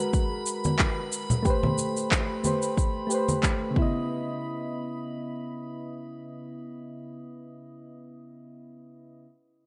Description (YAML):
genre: sunset chillout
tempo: 91 BPM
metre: 4/4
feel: swing 55% on 16ths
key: C# minor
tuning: A4 = 440 Hz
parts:
  - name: soft electric-piano-like synth keys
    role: accompaniment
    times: 0.0-9.2 s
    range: C#3 to D#5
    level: -33 LUFS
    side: equal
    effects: chorus, digital delay
  - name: drifting glass-harmonics texture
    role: texture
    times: 0.0-4.1 s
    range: B5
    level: -42 LUFS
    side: equal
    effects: chorus, built-in reverb
  - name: electronic kick drum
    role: drums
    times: 0.1-3.9 s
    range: none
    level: -28 LUFS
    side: equal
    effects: overdrive
  - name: electronic shaker and handclaps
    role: drums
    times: 0.1-3.6 s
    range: none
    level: -32 LUFS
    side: equal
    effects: overdrive
  - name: congas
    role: percussion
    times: 0.7-3.4 s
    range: none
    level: -31 LUFS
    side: equal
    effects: none
room: light reverb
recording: nothing above 10.9 kHz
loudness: -28 LUFS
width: mono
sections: 0.0-4.1 A section; 4.1-6.7 B section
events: none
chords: 0.0 G#m9; 1.4 Am9; 3.8 C#m9